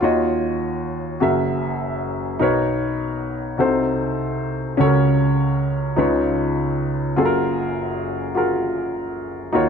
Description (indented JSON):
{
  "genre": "gospel",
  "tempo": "50 BPM (dotted quarters)",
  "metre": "6/8",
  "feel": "straight",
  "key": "F# major",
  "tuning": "A4 = 441 Hz",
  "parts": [
    { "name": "dark baby grand piano", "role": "solo", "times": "0.0-9.7 s", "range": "F#1 to E5", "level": "-18 LUFS", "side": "equal", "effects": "none" }
  ],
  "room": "moderate echo chamber reverb, RT60 2.1 s",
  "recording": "dark, warm production",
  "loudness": "-19 LUFS",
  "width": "side -6 dB against mid",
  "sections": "0.0-9.5 A section",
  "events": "none",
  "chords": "0.0 D#m9; 1.2 F#9; 2.4 Bmaj9; 3.6 Cdim7; 4.8 F#/C#; 6.0 C#9; 7.2 F#maj9"
}